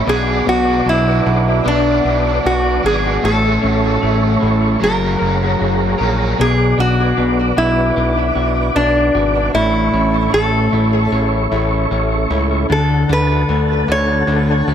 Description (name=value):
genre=dream pop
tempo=76 BPM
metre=4/4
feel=straight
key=B dorian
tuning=A4 = 438 Hz
part: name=lap resonator guitar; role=melody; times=0.0-14.7 s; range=D4 to C#5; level=-18 LUFS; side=right 1 dB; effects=analog delay
part: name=raw garage guitar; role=accompaniment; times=0.0-6.4 s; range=A2 to A4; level=-25 LUFS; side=right 5 dB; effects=overdrive, harmonic tremolo, ensemble chorus
part: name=mellow tonewheel organ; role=sustained chords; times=0.0-14.7 s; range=D4 to D6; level=-22 LUFS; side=right 1 dB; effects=chorus vibrato, fast rotary speaker
part: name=clean electric guitar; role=arpeggios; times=0.0-14.7 s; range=A2 to A#4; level=-19 LUFS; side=left 2 dB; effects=wide subtle chorus, analog delay
part: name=fat analog bass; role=bass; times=0.0-14.7 s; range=F#1 to D2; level=-18 LUFS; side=equal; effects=none
room=light reverb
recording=echo-heavy mix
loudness=-13 LUFS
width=side -9 dB against mid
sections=0.0-6.4 A section; 6.4-14.7 A section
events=none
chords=0.1 Bm; 3.2 A; 4.8 F#add9; 6.4 Bm; 9.5 A; 12.7 D